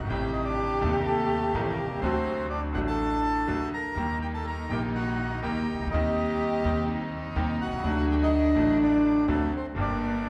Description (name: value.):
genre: tango.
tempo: 124 BPM.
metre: 4/4.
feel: rubato.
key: unclear.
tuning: A4 = 444 Hz.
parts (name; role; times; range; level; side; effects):
bandoneon; melody; 0.0-10.3 s; A3 to Bb5; -33 LUFS; equal; none.
warm cello; second line; 0.0-10.3 s; Bb3 to G4; -31 LUFS; equal; none.
bright concert grand piano; accompaniment; 0.0-10.3 s; Eb1 to Bb4; -34 LUFS; equal; none.
upright bass; bass; 0.0-10.3 s; G1 to Eb2; -34 LUFS; equal; none.
dark studio string section; stabs; 4.0-10.3 s; F#3 to F#4; -40 LUFS; equal; none.
room: wet recital hall reverb, RT60 1.4 s.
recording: recorded in a church or concert hall.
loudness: -27 LUFS.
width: mono.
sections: 0.0-10.3 A section.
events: none.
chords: 0.1 Adim; 2.0 D; 4.0 Eb; 5.9 Cm/Eb; 7.8 D; 9.8 Gm.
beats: | 0.09 0.57 1.06 1.54 | 2.02 2.51 2.99 3.48 | 3.97 4.46 4.94 5.43 | 5.91 6.39 6.88 7.36 | 7.84 8.32 8.80 9.29 | 9.77 10.25.